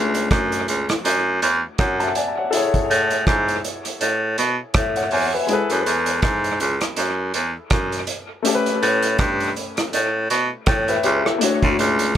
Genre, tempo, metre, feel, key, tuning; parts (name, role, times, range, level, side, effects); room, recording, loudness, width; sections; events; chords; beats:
lovers rock reggae; 81 BPM; 4/4; swing 58% on 16ths; A major; A4 = 441 Hz
clear baby grand piano; accompaniment; 0.0-12.2 s; G#3 to A5; -23 LUFS; left 3 dB; dub echo
clear baritone saxophone; bass; 0.0-12.1 s; C#2 to B2; -20 LUFS; right 1 dB
vintage drum kit; drums; 0.1-12.2 s; hi-hat, kick drum, rim click; -22 LUFS; right 1 dB; dub echo
light reverb, studio reverb; -18 LUFS; side -10 dB against mid
0.0-12.2 A section
grand piano fill 4.4-5.5
0.0 Dmaj7; 2.5 Amaj7; 5.5 F#m11; 8.5 A9; 11.4 Dmaj7
0.31 1.05 1.79 | 2.53 3.27 4.01 4.75 | 5.49 6.23 6.97 7.71 | 8.45 9.19 9.93 10.68 | 11.41 12.16